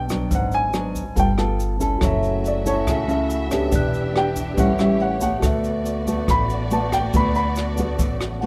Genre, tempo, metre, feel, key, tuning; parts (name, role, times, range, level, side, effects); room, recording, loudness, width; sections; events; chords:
bossa nova; 141 BPM; 4/4; straight; D major; A4 = 440 Hz
warm baby grand piano; melody; 0.0-7.8 s; C#5 to B5; -27 LUFS; equal
nylon-string guitar; accompaniment; 0.0-8.5 s; G#2 to A4; -26 LUFS; equal
upright bass; bass; 0.0-8.5 s; E1 to D2; -28 LUFS; equal
jazz brush drum kit; drums; 0.1-8.5 s; hi-hat, kick drum, rim click; -28 LUFS; equal
tube shaker; percussion; 0.1-8.4 s; -42 LUFS; equal
tine electric piano; accompaniment; 2.0-8.5 s; F#4 to F#6; -31 LUFS; equal
warm studio string section; sustained chords; 2.0-8.5 s; A3 to E5; -33 LUFS; equal
studio reverb; rough home demo mix; -21 LUFS; mono
0.0-8.5 A section
grand piano solo 0.0-8.5; tine electric piano fill 8.2
0.3 G#m7b5; 1.2 G9; 2.0 F#m7; 3.7 Em7; 4.6 A7; 5.4 D6